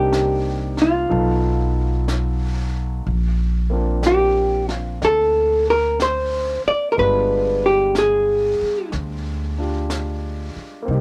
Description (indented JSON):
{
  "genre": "jazz ballad",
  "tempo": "61 BPM",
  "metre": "4/4",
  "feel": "swing 66% on 8ths",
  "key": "unclear",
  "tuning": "A4 = 440 Hz",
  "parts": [
    { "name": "hollow-body jazz guitar", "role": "melody", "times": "0.0-8.9 s", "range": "F4 to D5", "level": "-20 LUFS", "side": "equal", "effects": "none" },
    { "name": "warm concert grand piano", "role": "accompaniment", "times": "0.0-11.0 s", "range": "F#3 to A4", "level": "-31 LUFS", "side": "equal", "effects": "none" },
    { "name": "upright bass", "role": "bass", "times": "0.0-11.0 s", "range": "G1 to D2", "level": "-25 LUFS", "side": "equal", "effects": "none" },
    { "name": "jazz brush drum kit", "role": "drums", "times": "0.1-11.0 s", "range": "brushed snare drum, hi-hat, snare drum", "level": "-36 LUFS", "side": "equal", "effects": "none" }
  ],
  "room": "light reverb",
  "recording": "home recording on cassette",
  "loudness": "-20 LUFS",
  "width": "mono",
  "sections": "0.0-11.0 A section",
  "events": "none",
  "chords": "0.0 Cm7; 1.1 B7#11; 3.1 Bb; 7.0 G7b9"
}